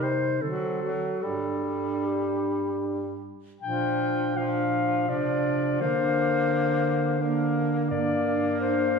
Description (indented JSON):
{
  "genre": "classical, lyrical piece for single-reed quartet",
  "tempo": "72-89 BPM",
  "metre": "3/4",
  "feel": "rubato",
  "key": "Bb major from 3.6 s",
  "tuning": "A4 = 443 Hz",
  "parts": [
    { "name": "clear clarinet", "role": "melody", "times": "0.0-9.0 s", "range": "G4 to G5", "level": "-28 LUFS", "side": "left 5 dB", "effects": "none" },
    { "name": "clear alto saxophone", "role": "second line", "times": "0.0-9.0 s", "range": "C4 to Eb4", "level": "-29 LUFS", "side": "right 4 dB", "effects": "none" },
    { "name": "warm tenor saxophone", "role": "accompaniment", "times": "0.0-9.0 s", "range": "F3 to Bb3", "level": "-29 LUFS", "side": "left 2 dB", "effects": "none" },
    { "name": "mellow bass clarinet", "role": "bass", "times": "0.0-9.0 s", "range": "G2 to D3", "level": "-33 LUFS", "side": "right 2 dB", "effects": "none" }
  ],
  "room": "wet recital hall reverb, RT60 1.5 s",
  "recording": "recorded in a church or concert hall",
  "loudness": "-24 LUFS",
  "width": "side -5 dB against mid",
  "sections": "0.0-3.6 A section; 3.6-9.0 B section",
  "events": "none",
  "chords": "0.4 D7; 1.2 G5; 3.6 Bb; 5.8 Bb/D; 7.9 Gm",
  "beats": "0.42 | 1.22 2.05 2.84 | 3.61 4.36 5.09 | 5.81 6.51 7.21 | 7.91 8.60"
}